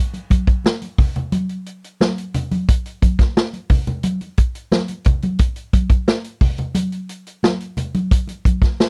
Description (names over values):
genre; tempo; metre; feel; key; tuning
funk; 88 BPM; 4/4; straight; none; none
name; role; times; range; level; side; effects
vintage drum kit; drums; 0.1-8.9 s; hi-hat, kick drum, snare drum; -18 LUFS; equal; none
congas; percussion; 0.1-8.6 s; none; -26 LUFS; equal; none
room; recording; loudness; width
little or no reverb; dry, close 1970s-style studio recording; -19 LUFS; mono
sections
0.0-8.9 A section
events
none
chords
none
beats
0.65 1.33 2.01 | 2.69 3.37 4.04 4.72 | 5.40 6.08 6.76 7.44 | 8.12 8.79